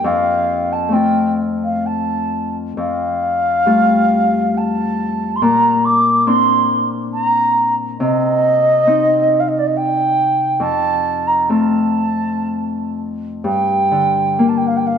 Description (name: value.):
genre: celtic folk, Celtic slow air.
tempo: 59-72 BPM.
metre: 3/4.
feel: rubato.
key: unclear.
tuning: A4 = 440 Hz.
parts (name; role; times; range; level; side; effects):
baroque flute; melody; 0.0-15.0 s; D5 to D6; -16 LUFS; right 2 dB; none.
Celtic harp; accompaniment; 0.0-15.0 s; F2 to G4; -18 LUFS; left 3 dB; none.
room: moderate concert hall reverb, RT60 2.2 s.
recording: none.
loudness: -14 LUFS.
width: side -7 dB against mid.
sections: 0.0-13.4 A section; 13.4-15.0 B section.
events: none.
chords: 0.0 F; 2.8 Fadd9; 5.4 Bbadd9; 8.0 Cm; 10.6 F; 13.4 Gm.